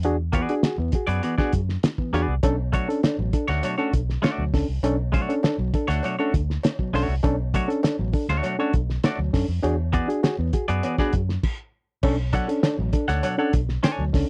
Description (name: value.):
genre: funk.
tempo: 100 BPM.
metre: 4/4.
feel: straight.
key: B dorian.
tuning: A4 = 441 Hz.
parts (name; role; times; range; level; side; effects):
barky reed electric piano; stabs; 0.0-14.3 s; B2 to A4; -28 LUFS; equal; overdrive.
vintage muted fingered electric bass; bass; 0.0-14.3 s; A1 to F#2; -27 LUFS; equal; none.
cloth-damped thuddy drum kit; drums; 0.0-14.3 s; crash cymbal, hi-hat, kick drum, snare drum; -26 LUFS; equal; none.
semi-hollow electric guitar; accompaniment; 0.3-14.0 s; A3 to G#5; -29 LUFS; equal; none.
cowbell; percussion; 2.4-14.0 s; none; -37 LUFS; equal; none.
room: little or no reverb.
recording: dry, close 1970s-style studio recording.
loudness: -24 LUFS.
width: mono.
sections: 0.0-12.0 A section; 12.0-14.3 A section.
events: stop 11.4-12.0.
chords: 0.0 E9; 2.4 Bm9; 9.6 E9; 12.0 Bm9.